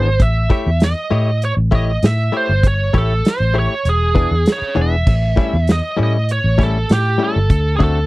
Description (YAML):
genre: straight-eighth soul blues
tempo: 99 BPM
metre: 4/4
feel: straight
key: A mixolydian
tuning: A4 = 440 Hz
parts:
  - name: biting lead guitar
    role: melody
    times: 0.0-8.1 s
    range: G4 to E5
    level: -20 LUFS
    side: right 2 dB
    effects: overdrive
  - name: direct-recorded clean electric guitar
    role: stabs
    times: 0.0-8.0 s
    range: A2 to C#5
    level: -20 LUFS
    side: left 5 dB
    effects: tape echo
  - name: vintage muted fingered electric bass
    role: bass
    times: 0.0-8.1 s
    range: E1 to A2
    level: -16 LUFS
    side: equal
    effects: none
  - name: warm soul drum kit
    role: drums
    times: 0.2-7.9 s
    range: crash cymbal, hi-hat, kick drum, snare drum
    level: -15 LUFS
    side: equal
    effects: none
room: little or no reverb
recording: dry, close 1970s-style studio recording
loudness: -14 LUFS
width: side -19 dB against mid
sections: 0.0-5.1 A section; 5.1-8.1 A section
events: none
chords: 0.2 A7; 3.9 E7; 5.1 A7; 7.5 D7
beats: | 0.20 0.81 1.42 2.03 | 2.64 3.25 3.86 4.46 | 5.07 5.68 6.29 6.89 | 7.50